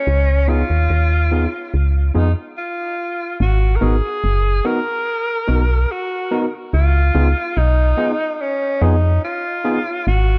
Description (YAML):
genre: lovers rock reggae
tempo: 72 BPM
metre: 4/4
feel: straight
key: unclear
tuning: A4 = 440 Hz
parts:
  - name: warm tenor saxophone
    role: melody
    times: 0.0-10.4 s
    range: C#4 to A#4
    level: -24 LUFS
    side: equal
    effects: tape echo
  - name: woody FM bass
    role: bass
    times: 0.1-10.4 s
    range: F#1 to E#2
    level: -17 LUFS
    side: equal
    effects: none
  - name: overdriven tine electric piano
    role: accompaniment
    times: 0.5-9.8 s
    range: B3 to A#4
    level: -25 LUFS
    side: equal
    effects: none
room: light reverb, studio ambience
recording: dark, warm production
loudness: -18 LUFS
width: mono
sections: 0.0-3.4 A section; 3.4-10.4 B section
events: stop 2.6-3.4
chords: 0.1 C#7; 3.4 G#m9; 6.7 C#7